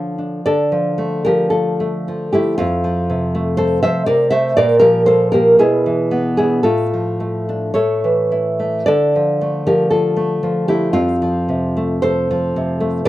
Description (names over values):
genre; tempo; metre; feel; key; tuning
romantic piece for solo classical guitar; 52-61 BPM; 2/4; rubato; D minor; A4 = 440 Hz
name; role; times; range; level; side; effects
nylon-string guitar; solo; 0.0-13.1 s; F2 to E5; -14 LUFS; equal; none
room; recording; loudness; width
little or no reverb; recorded outdoors, with no room sound; -14 LUFS; side -15 dB against mid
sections
0.4-13.1 A section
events
none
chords
0.4 Dm; 2.6 F; 4.6 Bb5; 5.6 E7/B; 6.7 Dm/A; 7.8 A; 8.9 Dm; 11.0 F